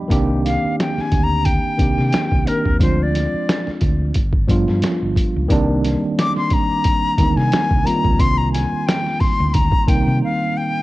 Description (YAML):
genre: R&B, neo-soul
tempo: 89 BPM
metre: 4/4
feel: swing 54% on 16ths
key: C minor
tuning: A4 = 441 Hz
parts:
  - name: tine electric piano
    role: accompaniment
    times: 0.0-10.8 s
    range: Eb3 to B5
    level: -21 LUFS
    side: right 1 dB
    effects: medium stereo tremolo
  - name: hollow-body short-scale fingered electric bass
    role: bass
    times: 0.1-10.2 s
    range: G1 to C3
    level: -20 LUFS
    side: equal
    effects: none
  - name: boom bap sampler-style drum kit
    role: drums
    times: 0.1-10.1 s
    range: hi-hat, kick drum, snare drum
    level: -19 LUFS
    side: equal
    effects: cassette tape
  - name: silver concert flute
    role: melody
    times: 0.4-10.8 s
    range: Bb4 to D6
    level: -22 LUFS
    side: left 3 dB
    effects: none
room: digital ambience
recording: home recording on cassette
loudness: -15 LUFS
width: side -18 dB against mid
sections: 0.1-10.8 A section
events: flute solo 0.1-10.8; break 10.2-10.8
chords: 0.1 Cm7; 2.8 Dm7b5; 4.2 G7; 5.5 Cm7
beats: | 0.11 0.78 1.46 2.13 | 2.80 3.48 4.15 4.83 | 5.50 6.17 6.85 7.52 | 8.20 8.87 9.54 10.22